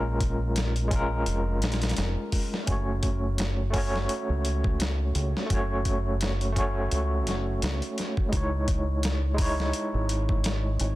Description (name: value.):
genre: trip hop.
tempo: 85 BPM.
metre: 4/4.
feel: swing 56% on 16ths.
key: unclear.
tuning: A4 = 440 Hz.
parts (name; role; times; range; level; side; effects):
overdriven tine electric piano; accompaniment; 0.0-11.0 s; Ab3 to Db5; -30 LUFS; equal; fast tremolo, tape echo.
deep dub fingered electric bass; bass; 0.0-11.0 s; F1 to Db2; -28 LUFS; equal; none.
dusty soul sampler-style drum kit; drums; 0.2-11.0 s; hi-hat, kick drum, snare drum; -29 LUFS; equal; overdrive.
room: little or no reverb.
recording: dense, heavily limited modern master.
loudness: -24 LUFS.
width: side -17 dB against mid.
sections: 0.0-11.0 A section.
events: none.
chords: 0.0 Bbm7; 2.7 Gbm; 8.3 Dbmadd9.